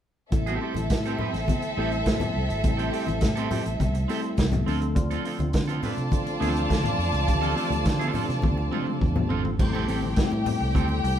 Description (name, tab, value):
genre	disco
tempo	104 BPM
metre	4/4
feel	straight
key	A minor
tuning	A4 = 437 Hz
part	warm studio violin section	second line	0.3-11.2 s	C4 to A5	-30 LUFS	right 1 dB	none
part	electric guitar at the edge of break-up	accompaniment	0.3-11.1 s	C4 to B4	-32 LUFS	right 7 dB	none
part	mellow tine electric piano	accompaniment	0.3-11.2 s	E3 to A4	-31 LUFS	left 5 dB	medium stereo tremolo
part	fingered electric bass	bass	0.3-11.2 s	G#1 to D3	-28 LUFS	equal	none
part	vintage drum kit	drums	0.3-11.2 s	crash cymbal, hi-hat, kick drum, snare drum, toms	-27 LUFS	equal	none
part	congas	percussion	0.7-11.0 s	none	-32 LUFS	left 4 dB	none
part	percussive tonewheel organ	sustained chords	5.0-11.2 s	D3 to G4	-34 LUFS	right 1 dB	overdrive, chorus vibrato, slow rotary speaker
room	moderate studio reverb, RT60 0.8 s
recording	band playing live in one room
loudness	-23 LUFS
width	side -10 dB against mid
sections	0.3-9.6 A section; 9.6-11.2 B section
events	drum fill 8.4-9.6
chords	0.3 Am7; 4.7 Dm7; 9.6 Am7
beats	| 0.32 0.90 1.48 2.06 | 2.64 3.22 3.80 4.38 | 4.96 5.54 6.12 6.70 | 7.28 7.86 8.44 9.01 | 9.59 10.17 10.75